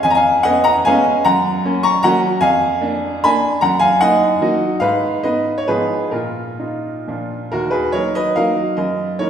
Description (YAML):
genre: classical, romantic triple-time dance for piano with dotted rhythms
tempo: 122-162 BPM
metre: 3/4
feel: rubato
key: Eb minor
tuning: A4 = 439 Hz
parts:
  - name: bright baby grand piano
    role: solo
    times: 0.0-9.3 s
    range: Eb2 to C#6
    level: -14 LUFS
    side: equal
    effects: none
room: wet recital hall reverb, RT60 1.8 s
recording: recorded in a church or concert hall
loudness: -14 LUFS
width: side -8 dB against mid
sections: 0.0-7.5 A section; 7.5-9.3 B section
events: none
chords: 0.0 C#7/E#; 1.3 F#; 2.4 Bb7/F; 3.6 Ebm/Gb; 4.8 Abm; 5.7 Fdim/Ab; 6.1 Bbsus4; 7.1 Bb; 7.5 Ebm; 8.8 Ebm/Gb